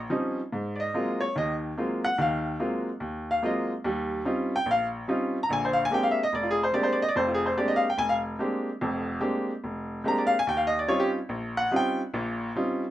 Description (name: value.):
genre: solo jazz.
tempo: 145 BPM.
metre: 4/4.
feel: swing 65% on 8ths.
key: Eb major.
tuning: A4 = 438 Hz.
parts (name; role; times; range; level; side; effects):
bright upright piano; solo; 0.0-12.8 s; F1 to Bb5; -25 LUFS; equal; none.
room: moderate studio reverb, RT60 0.6 s.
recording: minimal, uncompressed stereo recording.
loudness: -25 LUFS.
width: side -13 dB against mid.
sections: 0.0-12.9 A section.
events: upright piano solo 0.0-12.9.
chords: 0.0 Eb13; 0.5 Ab13; 3.8 Eb13; 5.5 Bb13; 10.5 Eb13.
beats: 0.10 | 0.52 0.94 1.35 1.77 | 2.18 2.60 3.01 3.43 | 3.84 4.26 4.67 5.09 | 5.50 5.92 6.33 6.74 | 7.16 7.57 7.99 8.40 | 8.82 9.23 9.64 10.06 | 10.47 10.88 11.30 11.71 | 12.13 12.54.